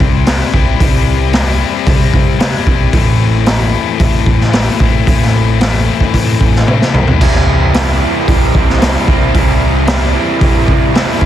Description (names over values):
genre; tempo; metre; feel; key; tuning
quiet-loud alternative rock; 112 BPM; 4/4; straight; unclear; A4 = 444 Hz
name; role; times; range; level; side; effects
cranked stack guitar; riff; 0.0-11.3 s; A2 to E4; -16 LUFS; left 12 dB; overdrive
picked electric bass; bass; 0.0-11.3 s; A1 to C3; -15 LUFS; right 1 dB; none
raw garage drum kit; drums; 0.0-11.3 s; crash cymbal, hi-hat, kick drum, snare drum, toms; -12 LUFS; right 1 dB; none
raw garage guitar; riff; 7.2-11.3 s; C3 to E4; -16 LUFS; right 15 dB; overdrive
room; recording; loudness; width
small room ambience; dense, heavily limited modern master; -9 LUFS; side -11 dB against mid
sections
0.0-11.3 A section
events
drum fill 6.7-7.2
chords
0.0 C; 2.9 Am; 7.2 C